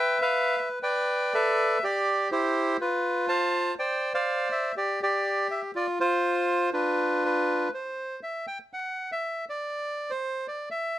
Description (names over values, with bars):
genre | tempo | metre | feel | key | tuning
tango | 122 BPM | 4/4 | rubato | unclear | A4 = 442 Hz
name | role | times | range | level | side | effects
bandoneon | solo | 0.0-11.0 s | D4 to A5 | -24 LUFS | equal | none
room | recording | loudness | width
light reverb | vinyl crackle | -25 LUFS | side -13 dB against mid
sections
0.0-7.7 A section; 7.7-11.0 B section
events
none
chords
0.0 Em/B; 0.8 Gadd9; 1.8 Em7; 2.8 F; 3.8 Cadd9; 4.8 N.C.; 6.7 Dm6; 7.7 N.C.